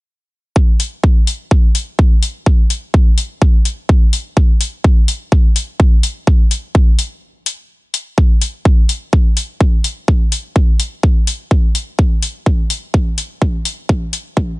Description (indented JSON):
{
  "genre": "bass house",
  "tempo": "126 BPM",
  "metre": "4/4",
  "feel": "swing 56% on 16ths",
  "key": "none",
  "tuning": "none",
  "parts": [
    { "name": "electronic kick drum", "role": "drums", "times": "0.6-14.5 s", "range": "none", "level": "-11 LUFS", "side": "equal", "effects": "overdrive" },
    { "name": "electronic hi-hat", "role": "drums", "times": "0.8-14.2 s", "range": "none", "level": "-19 LUFS", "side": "left 5 dB", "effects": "none" }
  ],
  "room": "little or no reverb",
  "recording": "high-pass filter, nothing above 10.6 kHz",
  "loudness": "-12 LUFS",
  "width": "side -22 dB against mid",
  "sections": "0.6-8.2 A section; 8.2-14.6 B section",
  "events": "break 7.2-8.2; build-up 8.2-14.6; filter sweep 8.2-14.6",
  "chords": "none",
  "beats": "| 0.56 1.03 1.51 1.99 | 2.46 2.94 3.42 3.89 | 4.37 4.84 5.32 5.80 | 6.27 6.75 7.22 7.70 | 8.18 8.65 9.13 9.61 | 10.08 10.56 11.04 11.51 | 11.99 12.46 12.94 13.42 | 13.89 14.37"
}